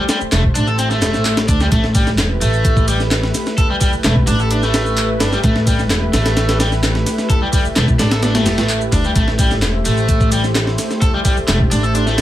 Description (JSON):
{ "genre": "breakbeat, breaks", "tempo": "129 BPM", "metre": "4/4", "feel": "straight", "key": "A minor", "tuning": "A4 = 441 Hz", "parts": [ { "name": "lush unison pad", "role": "sustained chords", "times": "0.0-12.2 s", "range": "A3 to C5", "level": "-23 LUFS", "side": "equal", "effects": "chorus, sidechain pumping" }, { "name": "overdriven electric guitar", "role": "riff", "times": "0.0-12.2 s", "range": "G3 to A4", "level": "-20 LUFS", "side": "equal", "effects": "tube saturation, tape echo" }, { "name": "breakbeat sampler-style drum kit", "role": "drums", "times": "0.1-12.2 s", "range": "hi-hat, kick drum, snare drum", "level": "-17 LUFS", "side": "equal", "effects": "none" }, { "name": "punchy analog drum machine", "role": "drums", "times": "0.1-12.2 s", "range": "handclaps, ride cymbal, shaker", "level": "-26 LUFS", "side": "right 1 dB", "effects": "none" }, { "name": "upright bass", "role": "bass", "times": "0.2-12.2 s", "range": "E1 to D2", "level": "-18 LUFS", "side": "equal", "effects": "none" } ], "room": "light reverb", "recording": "vinyl crackle", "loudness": "-13 LUFS", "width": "side -13 dB against mid", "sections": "0.0-12.2 A section", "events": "none", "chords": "0.0 Am7" }